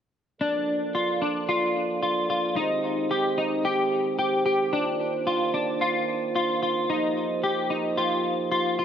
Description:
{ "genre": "dream pop", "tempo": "111 BPM", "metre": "4/4", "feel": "straight", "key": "Bb major", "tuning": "A4 = 441 Hz", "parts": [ { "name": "dark French horn section", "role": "sustained chords", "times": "0.4-8.8 s", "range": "Eb3 to D5", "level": "-29 LUFS", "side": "right 4 dB", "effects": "none" }, { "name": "semi-hollow electric guitar", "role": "arpeggios", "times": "0.4-8.8 s", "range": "D4 to G4", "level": "-24 LUFS", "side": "left 1 dB", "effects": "analog chorus, digital delay" } ], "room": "wet plate reverb, RT60 2.5 s", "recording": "nothing above 10.4 kHz", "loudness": "-23 LUFS", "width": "side -8 dB against mid", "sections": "0.4-8.8 A section", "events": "none", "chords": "0.4 Bbmaj7; 2.6 Abmaj7; 4.7 Cm11; 6.9 F9sus4", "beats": "| 0.41 0.95 1.49 2.03 | 2.57 3.11 3.65 4.19 | 4.73 5.27 5.82 6.36 | 6.90 7.44 7.98 8.52" }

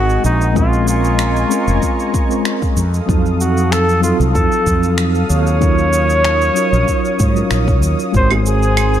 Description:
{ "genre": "sunset chillout", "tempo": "95 BPM", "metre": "4/4", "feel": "straight", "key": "Bb minor", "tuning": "A4 = 440 Hz", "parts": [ { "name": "clear flugelhorn", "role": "melody", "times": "0.0-9.0 s", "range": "Eb4 to Db5", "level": "-19 LUFS", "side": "left 1 dB", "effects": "digital delay" }, { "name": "soft electric-piano-like synth keys", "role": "accompaniment", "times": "0.0-9.0 s", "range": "F3 to Bb4", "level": "-19 LUFS", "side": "moving between left 3 dB and right 4 dB", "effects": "chorus, auto-pan, low-pass filter, digital delay" }, { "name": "lush unison pad", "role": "sustained chords", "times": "0.0-9.0 s", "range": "A4 to Eb6", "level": "-24 LUFS", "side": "left 1 dB", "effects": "chorus, vintage 12-bit sampler grit" }, { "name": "mellow fretless electric bass", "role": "bass", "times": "0.0-9.0 s", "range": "F1 to Ab2", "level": "-16 LUFS", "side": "equal", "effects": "none" }, { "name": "electronic shaker, finger snaps and claves", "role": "drums", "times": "0.1-9.0 s", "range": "none", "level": "-24 LUFS", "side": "right 2 dB", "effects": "overdrive" }, { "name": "electronic kick drum", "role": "drums", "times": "0.6-8.3 s", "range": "none", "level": "-18 LUFS", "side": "equal", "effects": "none" }, { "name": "bongos", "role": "percussion", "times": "8.3-8.4 s", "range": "none", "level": "-23 LUFS", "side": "left 3 dB", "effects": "none" } ], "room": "light reverb", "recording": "none", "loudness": "-12 LUFS", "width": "side -10 dB against mid", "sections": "0.0-9.0 A section", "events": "none", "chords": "0.0 Ab7; 0.6 Bbm9; 2.8 F7b9; 5.6 Ebm9; 8.1 Ab7", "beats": "| 0.56 1.19 1.82 2.46 | 3.09 3.72 4.35 4.98 | 5.61 6.25 6.88 7.51 | 8.14 8.77" }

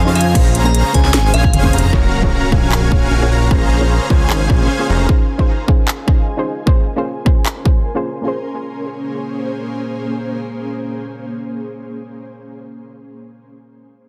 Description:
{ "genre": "future bass", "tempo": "152 BPM", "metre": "4/4", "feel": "half-time", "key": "Bb minor", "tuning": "A4 = 440 Hz", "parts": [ { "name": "glassy synth bell", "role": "melody", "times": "0.0-1.7 s", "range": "F5 to Bb5", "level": "-25 LUFS", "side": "equal", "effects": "chorus, phaser, sidechain pumping, tape echo" }, { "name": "soft round pluck", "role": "accompaniment", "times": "0.0-12.9 s", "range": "Bb3 to F5", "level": "-26 LUFS", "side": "equal", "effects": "chorus, cassette tape, sidechain pumping, tape echo" }, { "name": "airy dreamy lead", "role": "arpeggios", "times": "0.0-1.9 s", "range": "F5 to Bb5", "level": "-28 LUFS", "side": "equal", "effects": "chorus, sidechain pumping" }, { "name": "dense compressed supersaw", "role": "riff", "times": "0.0-5.1 s", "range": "Db4 to Bb5", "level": "-22 LUFS", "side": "equal", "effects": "sidechain pumping, tape echo" }, { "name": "fat analog bass", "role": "bass", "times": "0.0-5.1 s", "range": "F1 to F2", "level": "-18 LUFS", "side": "equal", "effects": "sidechain pumping" }, { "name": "trap drum kit", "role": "drums", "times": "0.2-7.5 s", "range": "crash cymbal, handclaps, hi-hat, snare drum, toms", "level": "-22 LUFS", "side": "equal", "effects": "none" }, { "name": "electronic kick drum", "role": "drums", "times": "0.3-7.7 s", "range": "none", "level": "-16 LUFS", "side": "equal", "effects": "none" }, { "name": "ethereal airy pad", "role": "sustained chords", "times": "2.8-12.2 s", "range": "Bb3 to Db6", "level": "-29 LUFS", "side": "equal", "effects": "ensemble chorus, built-in reverb, tremolo, sidechain pumping" }, { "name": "impact", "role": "sound effects", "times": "1.9-3.5 s", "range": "none", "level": "-25 LUFS", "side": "equal", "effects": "none" } ], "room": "little or no reverb", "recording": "dense, heavily limited modern master", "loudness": "-16 LUFS", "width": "mono", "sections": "0.0-1.9 A section; 1.9-8.2 B section; 8.2-11.4 C section", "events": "drop 0.0-1.9; drum fill 1.5-1.9; impact 1.9-3.5", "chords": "0.4 Bbm9; 1.9 Gbmaj7; 3.5 Bbm9; 5.1 Dbmaj9; 6.7 Bbm9", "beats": "| 0.35 0.75 1.14 1.54 | 1.93 2.33 2.72 3.12 | 3.51 3.90 4.30 4.69 | 5.09 5.48 5.88 6.27 | 6.67 7.06 7.46 7.85 | 8.25 8.64 9.04 9.43 | 9.83 10.22 10.62 11.01" }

